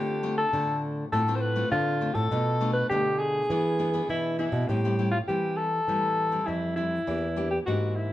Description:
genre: samba and choro.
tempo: 101 BPM.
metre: 4/4.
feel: straight.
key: A minor.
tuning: A4 = 440 Hz.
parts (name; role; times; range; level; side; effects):
breathy alto saxophone; melody; 0.0-8.1 s; E4 to C5; -27 LUFS; left 1 dB; none.
nylon-string guitar; accompaniment; 0.0-8.1 s; A2 to G#4; -34 LUFS; left 3 dB; none.
nylon-string guitar; bass; 0.0-8.1 s; E2 to E3; -29 LUFS; right 1 dB; none.
room: moderate stone room reverb, RT60 1.0 s.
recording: band playing live in one room, nothing above 10.9 kHz.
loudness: -24 LUFS.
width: side -14 dB against mid.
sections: 0.0-4.7 A section; 4.7-8.1 B section.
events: none.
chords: 0.0 Dm7; 2.3 Bm7b5; 3.5 E7; 4.7 Am7; 7.1 Em7b5.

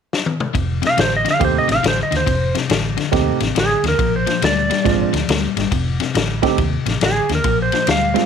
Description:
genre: electric blues shuffle.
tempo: 139 BPM.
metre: 4/4.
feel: swing 65% on 8ths.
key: F mixolydian.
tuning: A4 = 439 Hz.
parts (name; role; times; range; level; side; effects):
vintage drum kit; drums; 0.1-8.2 s; kick drum, ride cymbal, snare drum, toms; -20 LUFS; left 3 dB; none.
overdriven electric guitar; riff; 0.5-8.3 s; F2 to G3; -22 LUFS; left 11 dB; none.
vintage muted fingered electric bass; bass; 0.5-8.1 s; F1 to Eb2; -23 LUFS; right 2 dB; none.
clean lap steel guitar; melody; 0.9-8.3 s; Ab4 to F5; -18 LUFS; right 2 dB; none.
warm grand piano; accompaniment; 1.4-8.3 s; Ab3 to G4; -19 LUFS; right 16 dB; none.
room: small room ambience.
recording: 1960s-style stereo with parts hard left and right.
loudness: -15 LUFS.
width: side -7 dB against mid.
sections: 0.5-8.3 A section.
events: drum fill 0.1-0.5.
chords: 0.0 N.C.; 0.5 F9; 4.0 Bb9; 5.7 F7; 7.4 Bb9.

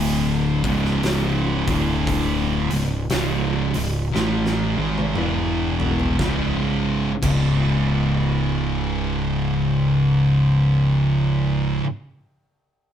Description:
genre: stoner and doom metal.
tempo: 58 BPM.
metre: 4/4.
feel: swing 62% on 8ths.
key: unclear.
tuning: A4 = 439 Hz.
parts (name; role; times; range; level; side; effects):
thick fuzz guitar; riff; 0.0-11.8 s; C#2 to A3; -23 LUFS; left 7 dB; distortion.
thick fuzz guitar; riff; 0.0-11.8 s; C#2 to A3; -21 LUFS; right 5 dB; distortion.
growling picked electric bass; bass; 0.0-11.8 s; C#1 to A1; -28 LUFS; equal; overdrive.
oversized low-tuned drum kit; drums; 0.0-7.6 s; crash cymbal, hi-hat, kick drum, snare drum, toms; -28 LUFS; equal; none.
room: light reverb.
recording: band playing live in one room.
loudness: -18 LUFS.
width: side -9 dB against mid.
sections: 0.0-6.2 A section; 6.2-10.3 B section.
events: drum fill 4.1-6.2.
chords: 0.0 D5; 0.5 C#5; 2.6 C#m; 5.2 E5; 6.2 C#5.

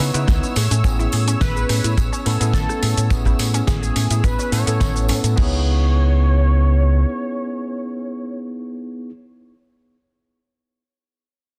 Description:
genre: nu-disco, nu disco.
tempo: 106 BPM.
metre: 4/4.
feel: straight.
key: C# minor.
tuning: A4 = 439 Hz.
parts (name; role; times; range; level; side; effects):
bell-like tine electric piano; accompaniment; 0.0-9.1 s; B3 to B4; -28 LUFS; equal; delay.
muted studio string section; sustained chords; 0.0-5.4 s; C#5 to E6; -34 LUFS; equal; sidechain pumping.
unison pluck; arpeggios; 0.0-5.6 s; B3 to A4; -34 LUFS; equal; sidechain pumping, delay.
fingered electric bass with an envelope filter; bass; 0.0-7.0 s; A1 to C#3; -20 LUFS; equal; sidechain pumping.
tambourine; percussion; 0.0-5.3 s; none; -37 LUFS; equal; none.
pop drum kit; drums; 0.1-5.5 s; cabasa, crash cymbal, hi-hat, rim click, snare drum; -29 LUFS; equal; small room ambience.
kick drum; drums; 0.3-5.5 s; none; -22 LUFS; equal; small room ambience.
unison lead; melody; 1.4-8.4 s; G#4 to C#5; -31 LUFS; equal; delay.
room: small room ambience.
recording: dense, heavily limited modern master.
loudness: -19 LUFS.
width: mono.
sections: 0.0-5.4 A section; 5.4-7.6 B section.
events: drop 0.0-5.4.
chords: 0.0 C#m7; 0.6 Amaj7; 5.4 C#m7.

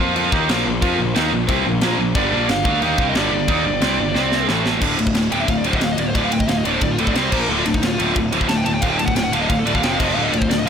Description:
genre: heavy metal.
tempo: 180 BPM.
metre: 4/4.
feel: straight.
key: D phrygian.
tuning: A4 = 443 Hz.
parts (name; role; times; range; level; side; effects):
pipe organ, flutes; sustained chords; 0.0-4.8, 10.2-10.7 s; C3 to C5; -34 LUFS; left 3 dB; none.
tight distorted guitar; riff; 0.0-10.7 s; D2 to F4; -22 LUFS; left 10 dB; distortion.
tight distorted guitar; riff; 0.0-10.7 s; D2 to F4; -22 LUFS; right 12 dB; distortion.
fuzz picked electric bass; bass; 0.0-10.7 s; D1 to F2; -24 LUFS; left 1 dB; overdrive.
tight metal drum kit; drums; 0.2-10.6 s; crash cymbal, kick drum, ride cymbal, snare drum; -22 LUFS; equal; none.
bluesy overdriven lead guitar; melody; 2.2-10.7 s; D4 to A5; -24 LUFS; right 2 dB; distortion, digital delay.
room: small room ambience.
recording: blown-out, overdriven recording, overdrive.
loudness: -16 LUFS.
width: side -7 dB against mid.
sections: 0.0-4.8 A section; 4.8-10.7 B section.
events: drum fill 4.1-4.8; lead electric guitar solo 4.8-10.7.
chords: 0.0 Bb5; 2.1 G5; 4.1 C5; 4.5 A5; 4.8 D5; 7.2 C5; 7.3 Bb5; 7.5 Dm; 9.8 F5; 10.2 Dm.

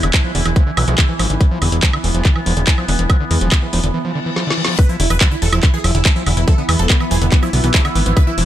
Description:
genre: psychedelic trance.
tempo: 142 BPM.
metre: 4/4.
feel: straight.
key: E major.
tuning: A4 = 440 Hz.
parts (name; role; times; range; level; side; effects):
resonant blip pluck; second line; 0.0-3.5, 6.3-7.8 s; E3 to B3; -35 LUFS; right 2 dB; none.
overtone-sweeping drone; sustained chords; 0.0-8.4 s; E3 to E4; -25 LUFS; right 1 dB; chorus, built-in reverb, sidechain pumping.
screaming distorted acid line; riff; 0.0-8.4 s; D3 to F3; -23 LUFS; equal; distortion, chorus, auto-pan, cassette tape, sidechain pumping, digital delay.
fat analog bass; bass; 0.0-8.4 s; E1 to E2; -17 LUFS; equal; tube saturation.
drum and bass drum kit; drums; 0.0-8.4 s; handclaps, hi-hat, snare drum, woodblock; -20 LUFS; right 1 dB; none.
ethereal airy pad; texture; 0.0-8.4 s; B3 to B5; -28 LUFS; equal; ensemble chorus, built-in reverb, sidechain pumping.
electronic kick drum; drums; 0.1-8.3 s; none; -13 LUFS; equal; none.
reverse cymbal; sound effects; 4.1-4.8 s; none; -25 LUFS; left 6 dB; none.
supersaw stab; melody; 4.8-8.4 s; B3 to B4; -23 LUFS; right 2 dB; phaser, sidechain pumping, dub echo.
room: little or no reverb.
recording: none.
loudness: -13 LUFS.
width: side -12 dB against mid.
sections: 0.0-4.8 A section; 4.8-8.4 B section.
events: break 3.9-4.8; reverse cymbal 4.1-4.8; drum fill 4.4-4.8; drop 4.8-8.4.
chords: 0.0 E5.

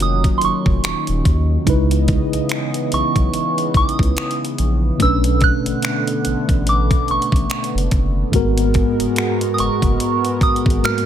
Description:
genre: contemporary R&B.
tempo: 72 BPM.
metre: 4/4.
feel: swing 58% on 16ths.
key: C# dorian.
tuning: A4 = 438 Hz.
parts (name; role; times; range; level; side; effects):
soft synth bell; melody; 0.0-11.1 s; B#5 to F#6; -22 LUFS; right 3 dB; chorus, phaser, tape echo.
mellow tine electric piano; accompaniment; 0.0-11.1 s; G#2 to C#5; -21 LUFS; equal; medium stereo tremolo.
chorused pulse-width pad; sustained chords; 0.0-11.1 s; C#3 to D#5; -24 LUFS; right 1 dB; sidechain pumping.
saturated sub bass; bass; 0.0-10.8 s; D#1 to D#2; -20 LUFS; equal; none.
detuned 8-bit digital drum machine; drums; 0.0-11.1 s; finger snaps, hi-hat, kick drum; -19 LUFS; equal; none.
room: little or no reverb.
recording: none.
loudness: -15 LUFS.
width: side -10 dB against mid.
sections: 0.0-11.1 A section.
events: none.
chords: 0.0 D#m9; 1.7 C#m9; 5.0 Bm9; 8.3 G#m9.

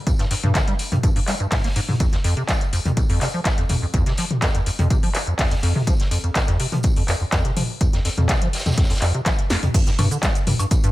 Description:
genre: acid house.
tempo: 124 BPM.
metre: 4/4.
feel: straight.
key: unclear.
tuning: A4 = 440 Hz.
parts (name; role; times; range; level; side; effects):
acid bass, square; riff; 0.1-10.9 s; F2 to Bb3; -23 LUFS; equal; analog chorus.
electro analog drum machine; drums; 0.1-10.9 s; crash cymbal, handclaps, hi-hat, shaker, snare drum, toms, woodblock; -24 LUFS; left 1 dB; none.
electronic kick drum; drums; 0.1-10.8 s; none; -20 LUFS; equal; none.
street-band drum kit; drums; 0.1-10.8 s; hi-hat, snare drum, tambourine; -33 LUFS; equal; sidechain pumping on hats, high-pass filter on hats, high-pass filter on snare, sidechain pumping on perc, high-pass filter on perc, high-pass filter on room.
room: little or no reverb.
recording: none.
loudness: -18 LUFS.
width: side -16 dB against mid.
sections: 0.0-9.7 A section; 9.7-10.9 B section.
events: drum fill 9.5; drop 9.7-10.9.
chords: none.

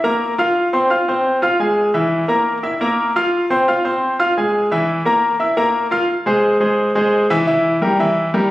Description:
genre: latin.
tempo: 174 BPM.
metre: 4/4.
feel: straight.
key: unclear.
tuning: A4 = 440 Hz.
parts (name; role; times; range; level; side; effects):
bright grand piano; solo; 0.0-8.5 s; E3 to F6; -14 LUFS; equal; none.
room: moderate large studio reverb, RT60 0.9 s.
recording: recorded on a phone in the room, club reverb, compression, nothing above 10.9 kHz.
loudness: -14 LUFS.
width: side -16 dB against mid.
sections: 0.0-6.1 A section; 6.1-8.5 B section.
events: none.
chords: 0.0 Bb5; 0.6 Fm; 1.9 Bb5; 3.3 Fm; 4.7 Bb5; 6.1 Eaug; 7.5 Edim.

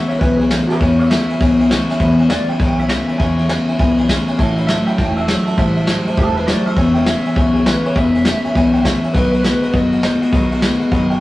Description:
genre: rockabilly.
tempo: 202 BPM.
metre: 4/4.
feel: swing 64% on 8ths.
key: E major.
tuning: A4 = 439 Hz.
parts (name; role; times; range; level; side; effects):
electric guitar through a small old amp; melody; 0.0-11.2 s; E4 to G#5; -23 LUFS; right 1 dB; none.
picked steel-string acoustic guitar; accompaniment; 0.0-11.2 s; E2 to F#4; -25 LUFS; left 1 dB; none.
warm upright piano; accompaniment; 0.0-11.2 s; B4 to C#6; -26 LUFS; equal; none.
electric guitar through a small old amp; riff; 0.0-11.2 s; E2 to G#3; -16 LUFS; left 1 dB; none.
upright bass; bass; 0.1-11.2 s; E1 to E2; -22 LUFS; equal; none.
vintage brush drum kit; drums; 0.1-11.2 s; kick drum, ride cymbal, snare drum; -19 LUFS; equal; none.
room: moderate stone room reverb, RT60 1.3 s.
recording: rough rehearsal-room recording, tube saturation, small room ambience.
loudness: -13 LUFS.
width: side -17 dB against mid.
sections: 0.0-11.2 A section.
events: clean electric guitar solo 0.0-11.2; upright piano fill 3.8-4.4.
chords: 0.0 E6; 4.4 A6; 5.6 Am7; 6.8 E6; 9.1 B6.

